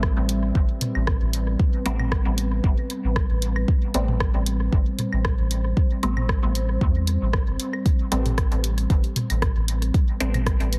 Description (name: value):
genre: dub techno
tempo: 115 BPM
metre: 4/4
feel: swing 53% on 16ths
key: A minor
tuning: A4 = 440 Hz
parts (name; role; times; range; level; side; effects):
- deep dark ambient pad; sustained chords; 0.0-10.8 s; G3 to C5; -33 LUFS; equal; chorus, built-in reverb, sidechain pumping
- soft dub sub bass; bass; 0.0-10.8 s; G1 to E2; -26 LUFS; equal; sidechain pumping
- deep house drum kit; drums; 0.0-10.8 s; hi-hat, rim click; -33 LUFS; equal; dub echo
- electronic kick drum; drums; 0.0-10.6 s; none; -24 LUFS; equal; none
- electronic toms and claves; percussion; 0.8-10.4 s; none; -33 LUFS; equal; sidechain pumping on toms, sidechain pumping on perc, dub echo
- filtered dub chord stab; stabs; 1.9-10.4 s; G3 to C4; -34 LUFS; equal; phaser, sidechain pumping, dub echo
room: little or no reverb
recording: heavily compressed radio sound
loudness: -23 LUFS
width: mono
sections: 0.0-7.9 A section; 7.9-10.8 A section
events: filter sweep on synth stab 0.0-7.9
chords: 0.0 Am9